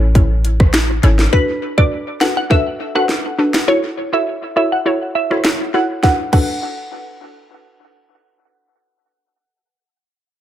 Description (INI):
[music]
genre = dancehall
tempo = 102 BPM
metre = 4/4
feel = straight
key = B minor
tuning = A4 = 441 Hz
[part]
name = hollow square pluck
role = accompaniment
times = 0.0-9.8 s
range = C#4 to C#5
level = -20 LUFS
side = left 1 dB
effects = chorus, low-pass filter, analog delay
[part]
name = clean 808-style bass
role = bass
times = 0.0-1.3 s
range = G#1 to A1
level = -14 LUFS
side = equal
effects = none
[part]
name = island pop drum kit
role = drums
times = 0.2-6.5 s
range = crash cymbal, finger snaps, hi-hat, kick drum, rim click, snare drum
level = -16 LUFS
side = equal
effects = analog delay
[part]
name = glassy wavetable pluck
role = melody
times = 1.3-7.8 s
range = B4 to F#5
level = -19 LUFS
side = right 1 dB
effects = chorus, low-pass filter, analog delay
[sound]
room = light reverb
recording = echo-heavy mix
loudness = -13 LUFS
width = side -11 dB against mid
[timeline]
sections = 0.0-1.3 A section; 1.3-6.0 B section; 6.0-8.4 C section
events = filter sweep 1.3-6.0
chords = 0.0 A; 1.3 Bm7; 3.7 F#m7; 6.0 Bm7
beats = 0.15 0.74 | 1.33 1.92 2.50 3.09 | 3.68 4.27 4.86 5.45 | 6.03 6.62 7.21 7.80